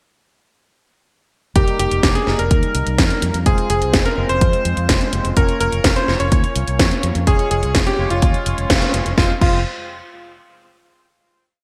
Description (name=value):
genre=italo disco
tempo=126 BPM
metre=4/4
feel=straight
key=F minor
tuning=A4 = 438 Hz
part: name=bright electric grand piano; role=melody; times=1.6-9.6 s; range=F4 to Db5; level=-24 LUFS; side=equal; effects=digital delay
part: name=analog synth brass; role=stabs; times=1.6-9.6 s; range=G3 to Db5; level=-28 LUFS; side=equal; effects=chorus, vintage 12-bit sampler grit, digital delay
part: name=fingered electric bass with an envelope filter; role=bass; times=1.6-9.6 s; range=F1 to F2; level=-24 LUFS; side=equal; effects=none
part: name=electronic kick drum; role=drums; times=1.6-9.5 s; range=none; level=-19 LUFS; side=equal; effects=none
part: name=house drum kit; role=drums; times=1.6-9.5 s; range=crash cymbal, hi-hat, snare drum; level=-23 LUFS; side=equal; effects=gated reverb
room=moderate plate reverb, RT60 1.9 s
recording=bright 1980s-style digital production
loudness=-17 LUFS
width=mono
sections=1.6-9.2 verse; 9.2-11.1 final chord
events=filter sweep on analog polysynth 1.6-9.2; band accent 8.7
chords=1.6 Eb/F; 3.5 Fm; 5.4 Bbm/F; 7.3 Db/F; 9.2 Fm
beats=| 1.56 2.03 2.51 2.98 | 3.46 3.94 4.41 4.89 | 5.37 5.84 6.32 6.79 | 7.27 7.75 8.22 8.70 | 9.18